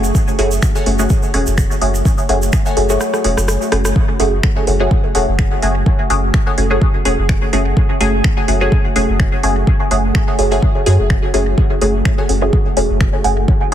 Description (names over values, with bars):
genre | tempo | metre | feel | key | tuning
dub techno | 126 BPM | 4/4 | swing 55% on 16ths | F# minor | A4 = 440 Hz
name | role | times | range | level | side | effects
deep dark ambient pad | sustained chords | 0.0-13.7 s | A3 to C#5 | -24 LUFS | right 1 dB | chorus, built-in reverb, sidechain pumping
filtered dub chord stab | stabs | 0.0-13.7 s | A3 to G#4 | -18 LUFS | equal | chorus, phaser, sidechain pumping, dub echo
soft dub sub bass | bass | 0.0-13.7 s | E1 to F#2 | -17 LUFS | equal | sidechain pumping
tube shaker | percussion | 0.0-3.9 s | none | -28 LUFS | right 5 dB | none
electronic kick drum | drums | 0.1-13.6 s | none | -15 LUFS | equal | none
soft vintage rhythm box | drums | 0.4-13.7 s | finger snaps, hi-hat, rim click | -24 LUFS | equal | soft clipping on snare, dub echo
wavetable chord stab | riff | 0.8-12.3 s | A4 to G#5 | -32 LUFS | left 3 dB | none
room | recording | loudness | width
little or no reverb | dense, heavily limited modern master | -12 LUFS | side -10 dB against mid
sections
0.0-4.0 A section; 4.0-13.7 A section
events
kick drops out 3.0-4.0; drum fill 3.0-4.0; band accent 3.8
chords
0.0 F#madd9